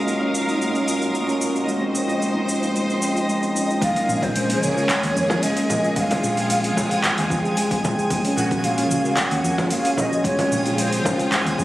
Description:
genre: organic downtempo.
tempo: 112 BPM.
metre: 4/4.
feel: straight.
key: Bb minor.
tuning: A4 = 440 Hz.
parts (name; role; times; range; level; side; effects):
clear studio string section; sustained chords; 0.0-11.6 s; Bb2 to F5; -28 LUFS; left 1 dB; sidechain pumping.
handpan; arpeggios; 0.0-11.6 s; Ab3 to Ab4; -23 LUFS; right 1 dB; tape echo.
twinkling granular texture; texture; 0.0-11.6 s; Eb4 to Ab5; -29 LUFS; equal; built-in reverb.
deep house drum kit; drums; 0.1-11.6 s; cabasa, handclaps, hi-hat; -27 LUFS; equal; overdrive.
breathy mellow ney; melody; 3.8-11.6 s; C5 to Gb5; -24 LUFS; equal; digital delay.
electronic kick drum; drums; 3.8-11.6 s; none; -28 LUFS; equal; overdrive.
mellow fretless electric bass; bass; 4.1-11.6 s; Bb1 to F2; -26 LUFS; equal; none.
frame drum; percussion; 5.3-11.2 s; none; -26 LUFS; left 1 dB; none.
room: light reverb, small room reverb.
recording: recorded on a phone in the room, studio reverb, compression.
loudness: -18 LUFS.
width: side -15 dB against mid.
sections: 0.0-3.8 A section; 3.8-11.6 B section.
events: none.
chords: 0.0 Gbmaj7/Bb; 1.7 Dbmaj7/Bb; 3.8 Bbm7; 6.0 Fm/Bb; 8.1 Gbmaj7/Bb; 10.2 Dbmaj7/Bb.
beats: 0.07 0.60 1.14 | 1.68 2.21 2.75 3.28 | 3.82 4.35 4.89 5.43 | 5.96 6.50 7.03 7.57 | 8.10 8.64 9.18 9.71 | 10.25 10.78 11.32.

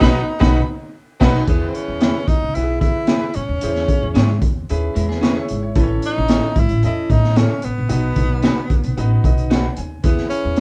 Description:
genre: uptempo 1960s-style soul.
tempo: 112 BPM.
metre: 4/4.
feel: straight.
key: E major.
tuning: A4 = 443 Hz.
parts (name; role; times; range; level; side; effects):
breathy tenor saxophone; melody; 0.0-10.6 s; B3 to E4; -26 LUFS; equal; none.
warm studio string section; second line; 0.0-1.4 s; B4 to B5; -28 LUFS; equal; none.
clear baby grand piano; accompaniment; 0.0-10.6 s; A2 to G#5; -28 LUFS; equal; none.
electric guitar through a small old amp; stabs; 0.0-10.6 s; B3 to C#5; -27 LUFS; equal; none.
upright bass; bass; 0.0-10.6 s; G#1 to E3; -23 LUFS; equal; none.
crunchy breakbeat drum kit; drums; 0.0-10.6 s; crash cymbal, hi-hat, kick drum, snare drum; -20 LUFS; equal; vintage 12-bit sampler grit.
electric guitar at the edge of break-up; riff; 5.0-5.7 s; G#3 to C#5; -29 LUFS; equal; none.
room: moderate studio reverb, RT60 0.5 s.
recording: band playing live in one room, cassette tape.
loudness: -18 LUFS.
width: mono.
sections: 0.0-1.5 A section; 1.5-10.6 B section.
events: band accent 0.0-1.5; grand piano fill 9.0-10.0.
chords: 0.0 B; 1.5 E; 3.6 C#m/E; 5.8 A; 7.9 B; 10.0 E.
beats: 0.42 0.95 | 1.48 2.01 2.55 3.08 | 3.62 4.15 4.69 5.22 | 5.76 6.29 6.83 7.37 | 7.90 8.44 8.97 9.51 | 10.05 10.58.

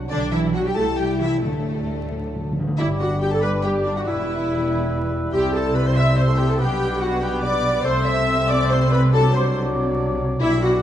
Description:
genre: quick classical-period movement for symphony orchestra.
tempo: 94 BPM (dotted quarters).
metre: 6/8.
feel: rubato.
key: G major.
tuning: A4 = 440 Hz.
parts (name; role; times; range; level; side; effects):
mellow French horn section; sustained chords; 0.0-10.8 s; F#3 to E4; -29 LUFS; left 4 dB; none.
rich studio double bass section; bass; 0.0-10.8 s; E1 to D2; -25 LUFS; right 1 dB; none.
warm studio violin section; melody; 0.1-10.8 s; A4 to E6; -31 LUFS; left 4 dB; none.
rich studio violin section; second line; 0.1-10.8 s; A3 to E5; -32 LUFS; left 2 dB; none.
rich studio viola section; accompaniment; 0.1-10.8 s; A3 to E5; -26 LUFS; equal; none.
warm studio cello section; bass; 0.1-10.8 s; E2 to A3; -25 LUFS; right 1 dB; none.
timpani; percussion; 1.4-2.7 s; D3; -27 LUFS; right 1 dB; none.
mellow hollow wooden flute; second line; 2.8-10.8 s; D6 to F#6; -31 LUFS; left 2 dB; none.
warm clarinet; second line; 2.8-10.7 s; D4 to E5; -28 LUFS; left 1 dB; none.
warm cor anglais; second line; 2.8-10.8 s; B4 to D5; -34 LUFS; right 2 dB; none.
mellow bassoon; accompaniment; 2.8-10.8 s; F#3 to B3; -29 LUFS; equal; none.
dark trumpet section; stabs; 2.8-10.8 s; D4 to E5; -28 LUFS; right 1 dB; none.
room: wet scoring stage reverb, RT60 1.6 s.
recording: dark, warm production, vinyl crackle.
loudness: -18 LUFS.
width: side -11 dB against mid.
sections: 0.0-2.8 A section; 2.8-10.8 B section.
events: timpani fill 2.1-2.8.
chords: 0.1 G/B; 0.8 Am7/C; 1.4 Dsus4; 2.1 D; 2.8 G5; 4.1 Em; 5.3 C; 6.6 G/B; 7.8 Am/C; 9.1 D7/C.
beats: | 0.11 0.77 | 1.44 2.12 | 2.79 3.43 | 4.07 4.71 | 5.33 5.96 | 6.59 7.22 | 7.85 8.49 | 9.13 9.77 | 10.41.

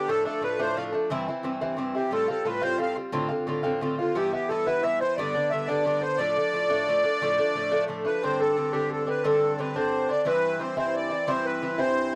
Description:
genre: celtic folk, Celtic slide.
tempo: 118 BPM (dotted quarters).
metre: 12/8.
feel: straight.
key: unclear.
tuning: A4 = 440 Hz.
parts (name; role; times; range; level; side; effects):
accordion; melody; 0.0-12.1 s; F4 to F5; -29 LUFS; equal; light tremolo tuning.
bright wooden flute; second line; 0.0-12.1 s; F4 to F5; -34 LUFS; equal; none.
Irish bouzouki; accompaniment; 0.0-12.2 s; G2 to F4; -30 LUFS; equal; none.
room: small room ambience.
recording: dry, close 1970s-style studio recording.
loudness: -26 LUFS.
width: mono.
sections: 0.0-8.2 A section; 8.2-12.2 B section.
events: none.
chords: 0.1 Dm; 1.1 C; 2.1 Fadd9; 3.1 Dm7; 4.2 Em; 5.2 G; 6.2 Dm; 8.2 Gsus4; 10.3 C.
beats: | 0.09 0.60 1.10 1.61 | 2.12 2.63 3.14 3.65 | 4.16 4.67 5.18 5.69 | 6.20 6.71 7.22 7.73 | 8.23 8.74 9.26 9.76 | 10.27 10.78 11.29 11.80.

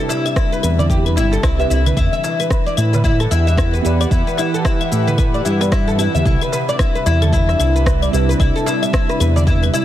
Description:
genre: organic downtempo.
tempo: 112 BPM.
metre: 4/4.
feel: swing 59% on 16ths.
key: unclear.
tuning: A4 = 440 Hz.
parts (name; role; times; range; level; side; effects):
deep mellow chord stab; accompaniment; 0.0-9.8 s; B3 to E5; -28 LUFS; right 5 dB; none.
warm analog pad; sustained chords; 0.0-9.8 s; C3 to F#5; -23 LUFS; equal; chorus, sidechain pumping.
oud; arpeggios; 0.0-9.8 s; E4 to E5; -20 LUFS; left 2 dB; tape echo.
electronic shaker, claves and rim click; drums; 0.0-9.8 s; none; -26 LUFS; left 2 dB; soft clipping on snare.
darbuka; percussion; 0.1-9.8 s; none; -27 LUFS; right 5 dB; none.
electronic kick drum; drums; 0.4-9.6 s; none; -18 LUFS; equal; none.
smooth synth bass; bass; 0.6-9.7 s; G1 to A2; -16 LUFS; equal; none.
room: digital ambience.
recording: dense, heavily limited modern master.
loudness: -14 LUFS.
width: side -12 dB against mid.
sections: 0.0-9.8 A section.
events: none.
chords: 0.0 Cmaj7; 2.0 Em7; 6.3 Cmaj7.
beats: 0.36 0.90 1.44 | 1.97 2.51 3.04 3.58 | 4.12 4.65 5.19 5.72 | 6.26 6.79 7.33 7.87 | 8.40 8.94 9.47.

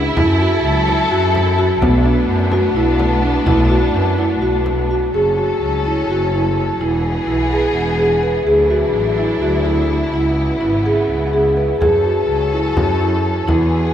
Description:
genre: contemporary instrumental, chamber music in an uneven meter.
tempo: 252 BPM (eighths).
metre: 7/8.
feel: straight.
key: F# minor.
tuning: A4 = 440 Hz.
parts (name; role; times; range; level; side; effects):
warm studio string section; sustained chords; 0.0-13.9 s; C#3 to A4; -21 LUFS; left 1 dB; none.
marimba with soft mallets; arpeggios; 0.0-13.7 s; B3 to B4; -17 LUFS; equal; none.
warm double bass; bass; 0.0-13.9 s; E1 to F#2; -19 LUFS; equal; none.
frame drum; percussion; 0.2-5.0, 11.8-13.7 s; none; -24 LUFS; left 1 dB; none.
room: wet cathedral reverb, RT60 7.7 s.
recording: in a vast, echoing space.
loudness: -14 LUFS.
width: side -10 dB against mid.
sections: 0.0-5.2 A section; 5.2-13.9 B section.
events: none.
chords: 0.2 F#m7; 1.8 Bm7; 5.2 F#m; 6.8 E; 8.5 Dadd9; 10.1 C#m7; 11.8 F#m.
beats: | 0.16 0.40 0.64 0.88 1.11 1.35 1.58 | 1.82 2.05 2.29 2.52 2.76 3.00 3.23 | 3.47 3.71 3.94 4.18 4.43 4.67 4.91 | 5.15 5.39 5.63 5.87 6.10 6.34 6.58 | 6.81 7.05 7.28 7.52 7.76 7.99 8.23 | 8.47 8.70 8.94 9.18 9.41 9.65 9.89 | 10.13 10.37 10.61 10.85 11.09 11.33 11.57 | 11.81 12.05 12.29 12.53 12.77 13.00 13.24 | 13.48 13.72.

